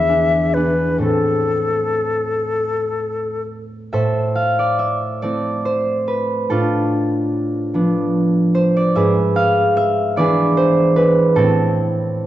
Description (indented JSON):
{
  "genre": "classical, romantic duo for flute and harp",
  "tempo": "41-50 BPM (dotted quarters)",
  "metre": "6/8",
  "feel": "rubato",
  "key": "A minor",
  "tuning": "A4 = 440 Hz",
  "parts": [
    { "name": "bright silver concert flute", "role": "melody", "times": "0.0-3.4 s", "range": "A4 to E5", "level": "-18 LUFS", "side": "left 3 dB", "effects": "none" },
    { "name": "concert harp", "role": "accompaniment", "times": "0.0-12.3 s", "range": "E2 to F5", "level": "-16 LUFS", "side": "right 1 dB", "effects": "none" }
  ],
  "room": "wet recital hall reverb, RT60 1.6 s",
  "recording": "dark, warm production, nothing above 7.8 kHz",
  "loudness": "-15 LUFS",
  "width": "side -13 dB against mid",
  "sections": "0.0-3.9 A section; 3.9-12.3 A section",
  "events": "none",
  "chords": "0.0 E7; 1.0 Am; 6.5 Bm7b5/A; 9.0 E7/G#; 11.4 Am"
}